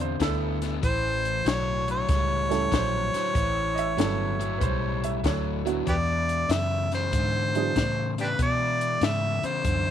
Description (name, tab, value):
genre	electric blues shuffle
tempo	95 BPM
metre	4/4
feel	swing 67% on 8ths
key	A mixolydian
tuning	A4 = 441 Hz
part	bright upright piano	second line	0.0-5.8 s	E4 to E5	-33 LUFS	right 17 dB	none
part	overdriven semi-hollow guitar	riff	0.0-9.9 s	E2 to C4	-31 LUFS	left 11 dB	none
part	vintage muted fingered electric bass	bass	0.0-9.9 s	G1 to B2	-29 LUFS	right 1 dB	none
part	compact cocktail drum kit	drums	0.2-9.8 s	hi-hat, kick drum, snare drum	-28 LUFS	left 2 dB	none
part	clear harmonica	melody	0.8-9.9 s	D4 to E5	-27 LUFS	right 1 dB	overdrive
part	dark baby grand piano	accompaniment	2.5-7.8 s	F#3 to A4	-30 LUFS	right 14 dB	none
room	studio ambience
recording	1960s-style stereo with parts hard left and right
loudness	-23 LUFS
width	side -10 dB against mid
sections	0.0-9.9 A section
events	none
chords	0.0 D7sus2; 0.8 A9; 5.9 E9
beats	0.21 | 0.84 1.47 2.10 2.73 | 3.36 3.99 4.62 5.25 | 5.88 6.51 7.13 7.76 | 8.39 9.02 9.65